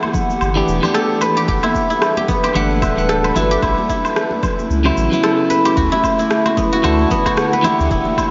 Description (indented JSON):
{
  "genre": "organic downtempo",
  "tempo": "112 BPM",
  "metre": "4/4",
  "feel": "swing 57% on 16ths",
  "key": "unclear",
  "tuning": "A4 = 440 Hz",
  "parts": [
    { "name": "warbly tape-like pad", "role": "sustained chords", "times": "0.0-8.3 s", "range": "D3 to F#5", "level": "-22 LUFS", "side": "equal", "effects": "chorus, built-in reverb, phaser, sidechain pumping" },
    { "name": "guzheng", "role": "arpeggios", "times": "0.0-8.3 s", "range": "B3 to E5", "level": "-21 LUFS", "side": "equal", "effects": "analog delay" },
    { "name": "electronic woodblock, shaker and rim click", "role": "drums", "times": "0.0-8.3 s", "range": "none", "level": "-26 LUFS", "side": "equal", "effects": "overdrive" },
    { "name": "congas", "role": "percussion", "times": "0.0-8.2 s", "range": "none", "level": "-30 LUFS", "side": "equal", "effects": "none" },
    { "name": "electronic kick drum", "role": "drums", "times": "0.1-8.3 s", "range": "none", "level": "-26 LUFS", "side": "equal", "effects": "overdrive" },
    { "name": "warm sub bass", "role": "bass", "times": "0.4-8.0 s", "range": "D1 to D2", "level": "-22 LUFS", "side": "equal", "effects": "sidechain pumping" },
    { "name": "clean electric guitar", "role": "accompaniment", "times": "0.6-8.3 s", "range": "C#3 to F#5", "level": "-25 LUFS", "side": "equal", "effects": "sidechain pumping, analog delay" }
  ],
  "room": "wet huge ambient reverb, RT60 7.7 s",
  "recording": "dreamy mix soaked in reverb, nothing above 7.5 kHz",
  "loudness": "-16 LUFS",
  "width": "mono",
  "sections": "0.0-8.3 A section",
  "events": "none",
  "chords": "0.0 Emadd9; 1.5 G6; 3.6 A; 5.8 D"
}